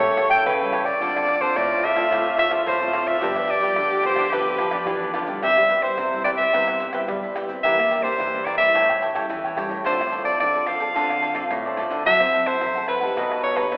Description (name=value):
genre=samba and choro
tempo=108 BPM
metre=4/4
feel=straight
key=C major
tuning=A4 = 440 Hz
part: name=bright soprano saxophone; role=melody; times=0.0-13.8 s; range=B4 to G5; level=-20 LUFS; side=equal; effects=none
part: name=breathy tenor saxophone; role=second line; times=0.0-5.4 s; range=D4 to A4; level=-26 LUFS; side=equal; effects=none
part: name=cavaquinho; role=accompaniment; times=0.0-13.7 s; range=D#4 to G5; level=-28 LUFS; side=equal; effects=none
part: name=nylon-string guitar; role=accompaniment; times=0.0-13.8 s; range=F#2 to A4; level=-34 LUFS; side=equal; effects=none
part: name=nylon-string guitar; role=bass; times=0.0-13.8 s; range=G2 to C4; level=-28 LUFS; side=equal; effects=none
part: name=egg shaker, pandeiro, surdo and tamborim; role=percussion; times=0.0-13.8 s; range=none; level=-33 LUFS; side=equal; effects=none
room=wet recital hall reverb, RT60 1.7 s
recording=recorded in a church or concert hall, telephone sound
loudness=-18 LUFS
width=side -32 dB against mid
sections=0.0-5.4 A section; 5.4-13.8 B section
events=none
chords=0.0 A7; 1.0 Dm7; 3.2 G7; 5.4 Cmaj7; 7.6 Em7b5; 8.7 A7; 9.9 Dm7; 12.1 F#m7b5; 13.2 B7b13